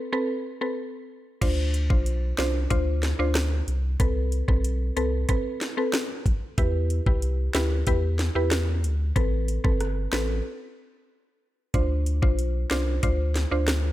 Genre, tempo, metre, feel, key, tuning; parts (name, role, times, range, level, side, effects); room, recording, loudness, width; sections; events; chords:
dancehall; 93 BPM; 4/4; straight; A minor; A4 = 440 Hz
mallet-like synth pluck; accompaniment; 0.1-13.7 s; C4 to C5; -29 LUFS; equal; chorus, sidechain pumping
warm sub bass; bass; 1.4-13.9 s; G1 to E2; -25 LUFS; equal
island pop drum kit; drums; 1.4-13.8 s; crash cymbal, hi-hat, kick drum, rim click, snare drum; -26 LUFS; equal
digital ambience; -23 LUFS; side -15 dB against mid
0.0-1.4 A section; 1.4-13.9 B section
break 0.0-1.4, 10.5-11.7
0.0 Amadd9; 1.4 Dm7; 4.0 Amadd9; 6.6 Em; 9.2 Amadd9; 11.7 Dm7